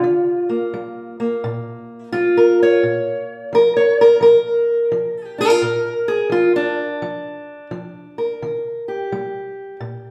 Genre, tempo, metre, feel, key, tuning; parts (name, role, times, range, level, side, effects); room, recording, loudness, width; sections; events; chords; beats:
acoustic country blues, solo or duo; 86 BPM; 4/4; swing 65% on 8ths; Bb major; A4 = 440 Hz
fingerpicked steel-string acoustic guitar; solo; 0.0-10.1 s; Bb2 to Db5; -18 LUFS; equal
wet large studio reverb, RT60 1.3 s; band playing live in one room; -18 LUFS; mono
0.0-10.1 A section
0.0 Eb; 2.8 Bb; 8.4 Eb
| 0.05 0.74 1.44 2.14 | 2.83 3.53 4.23 4.92 | 5.62 6.32 7.01 7.71 | 8.40 9.10 9.80